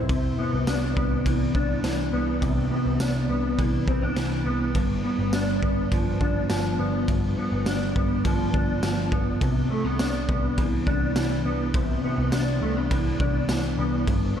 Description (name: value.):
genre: dream pop.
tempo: 103 BPM.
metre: 4/4.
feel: straight.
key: C major.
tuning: A4 = 437 Hz.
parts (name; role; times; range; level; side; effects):
mellow electric guitar; arpeggios; 0.0-14.4 s; G2 to B4; -25 LUFS; left 1 dB; ensemble chorus, analog delay.
vintage muted picked electric bass; bass; 0.0-14.3 s; G1 to C2; -28 LUFS; equal; none.
raw garage drum kit; drums; 0.1-14.2 s; kick drum, ride cymbal, snare drum, tambourine; -27 LUFS; equal; none.
room: moderate lush hall reverb, RT60 2.4 s.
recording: dreamy mix soaked in reverb.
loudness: -22 LUFS.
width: side -9 dB against mid.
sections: 0.1-14.4 A section.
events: none.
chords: 0.1 Cmaj9; 4.8 G7; 9.4 Cmaj9.